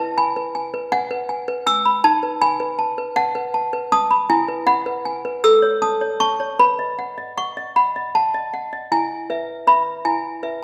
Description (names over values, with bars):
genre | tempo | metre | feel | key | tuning
classical, lullaby for toy piano | 53 BPM (dotted quarters) | 6/8 | straight | E major | A4 = 440 Hz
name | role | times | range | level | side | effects
toy piano | solo | 0.0-10.6 s | D#4 to E6 | -20 LUFS | equal | none
room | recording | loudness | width
wet recital hall reverb, RT60 1.6 s | dark, warm production | -20 LUFS | mono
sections
0.0-8.9 A section; 8.9-10.6 B section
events
none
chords
0.0 E; 2.0 B7/D#; 4.3 E; 5.4 A; 6.6 B; 8.9 E